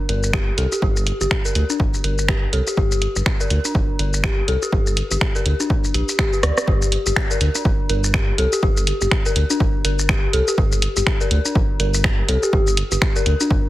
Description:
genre	minimal techno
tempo	123 BPM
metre	4/4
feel	swing 59% on 16ths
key	G minor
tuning	A4 = 440 Hz
part	dark detuned synth bell	riff	0.1-13.4 s	D4 to D5	-24 LUFS	left 2 dB	chorus, phaser, sidechain pumping, digital delay
part	round analog bass	bass	0.1-13.6 s	G1 to D2	-21 LUFS	equal	sidechain pumping
part	punchy analog drum machine	drums	0.1-13.5 s	finger snaps, hi-hat, rim click, shaker	-22 LUFS	equal	none
part	electronic kick drum	drums	0.3-13.6 s	none	-20 LUFS	equal	none
room	digital ambience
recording	heavily compressed radio sound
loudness	-17 LUFS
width	side -16 dB against mid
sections	0.0-6.7 A section; 6.7-13.7 B section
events	drum fill 6.4; drop 6.7-13.7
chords	0.0 G5; 6.7 N.C.

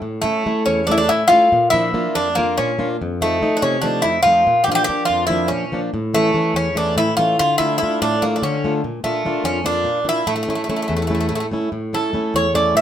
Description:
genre	greek folk, Greek bouzouki band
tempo	288 BPM (eighths)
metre	7/8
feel	straight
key	unclear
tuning	A4 = 440 Hz
part	fingerpicked plugged-in swing-style acoustic guitar	accompaniment	0.0-12.8 s	E2 to F4	-21 LUFS	left 1 dB	none
part	Greek bouzouki	melody	0.2-12.8 s	A3 to E5	-17 LUFS	equal	none
room	moderate studio reverb, RT60 0.6 s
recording	minimal, uncompressed stereo recording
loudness	-16 LUFS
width	side -10 dB against mid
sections	0.0-11.7 A section; 11.7-12.8 A section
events	speeding up 0.0-12.8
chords	0.0 A; 1.5 Bb; 3.0 F7; 4.5 Bb; 5.9 A; 7.4 Dm; 8.8 Bb; 10.3 A

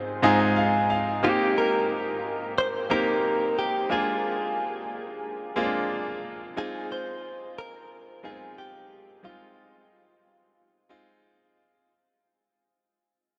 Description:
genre	pop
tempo	90 BPM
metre	4/4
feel	straight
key	unclear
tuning	A4 = 440 Hz
part	direct-recorded clean electric guitar	melody	0.0-11.2 s	F4 to C5	-31 LUFS	equal	lush chorus, analog delay
part	bright concert grand piano	accompaniment	0.0-11.9 s	Ab2 to Bb5	-28 LUFS	equal	none
room	wet huge ambient reverb, RT60 8.6 s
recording	dreamy mix soaked in reverb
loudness	-26 LUFS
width	mono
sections	0.0-11.9 A section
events	fade-out 0.0-11.9; grand piano fill 0.0-1.2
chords	0.0 Fm7/Ab; 1.2 Cm7; 3.9 Bb7; 6.6 Ab6; 9.2 Fm7/Ab

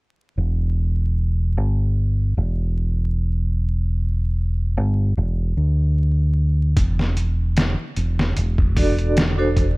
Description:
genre	trip hop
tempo	75 BPM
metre	4/4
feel	swing 54% on 16ths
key	E minor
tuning	A4 = 445 Hz
part	fingered electric bass	bass	0.4-9.8 s	E1 to D2	-19 LUFS	equal	tube saturation
part	trip hop sampler-style drum kit	drums	6.8-9.8 s	hi-hat, kick drum, snare drum	-20 LUFS	equal	overdrive, studio reverb
part	vibraphone with medium hard mallets	accompaniment	8.8-9.6 s	D4 to D5	-21 LUFS	right 1 dB	tremolo, tape echo
room	digital ambience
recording	dark, warm production, vinyl crackle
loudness	-18 LUFS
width	side -25 dB against mid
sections	0.4-9.8 A section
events	none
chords	0.4 Em7; 6.8 D/E

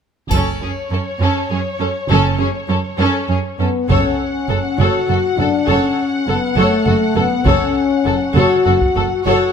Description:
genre	cinematic, epic orchestral film score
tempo	67 BPM (dotted quarters)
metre	6/8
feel	straight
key	F# minor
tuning	A4 = 440 Hz
part	warm symphonic violin section	melody	0.3-9.5 s	C#5 to F#5	-26 LUFS	left 4 dB	none
part	warm symphonic violin section	second line	0.3-9.5 s	F#4 to C#5	-23 LUFS	left 3 dB	none
part	rich symphonic viola section	accompaniment	0.3-9.5 s	C#4 to A4	-22 LUFS	right 1 dB	none
part	rich symphonic cello section	bass	0.3-9.3 s	F#2	-21 LUFS	right 3 dB	none
part	warm symphonic double bass section	bass	0.3-9.3 s	F#1	-20 LUFS	right 4 dB	none
part	taiko ensemble	drums	0.3-9.1 s	none	-21 LUFS	equal	none
part	triangle	percussion	0.3-1.5 s	none	-34 LUFS	left 1 dB	none
part	mellow French horn section	sustained chords	3.6-9.5 s	A3 to F#4	-17 LUFS	left 4 dB	none
room	light reverb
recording	close, detailed microphones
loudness	-14 LUFS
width	side -7 dB against mid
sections	0.3-3.9 A section; 3.9-9.5 B section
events	none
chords	0.3 F#m

